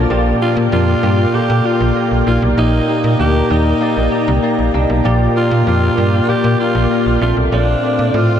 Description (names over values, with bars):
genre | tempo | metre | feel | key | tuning
pop | 97 BPM | 4/4 | straight | Bb major | A4 = 440 Hz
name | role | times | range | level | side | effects
bell-like tine electric piano | accompaniment | 0.0-8.4 s | Bb2 to Eb5 | -16 LUFS | left 3 dB | analog chorus
glassy FM pad | sustained chords | 0.0-8.4 s | Bb4 to D6 | -24 LUFS | right 1 dB | ensemble chorus, built-in reverb
direct-recorded clean electric guitar | riff | 0.0-8.4 s | F3 to G4 | -26 LUFS | right 8 dB | analog chorus, diffuse ambient delay
slap-like FM bass | bass | 0.0-8.4 s | Bb1 to Bb2 | -16 LUFS | equal | none
raspy alto saxophone | melody | 0.4-8.4 s | D4 to G4 | -19 LUFS | right 2 dB | diffuse ambient delay
room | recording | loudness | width
wet huge ambient reverb, RT60 7.2 s | dreamy mix soaked in reverb | -12 LUFS | side -9 dB against mid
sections
0.1-8.4 A section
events
none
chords
0.1 Bb6; 2.3 Ebmaj7/Bb; 5.0 Bb6; 7.2 Dm7/Bb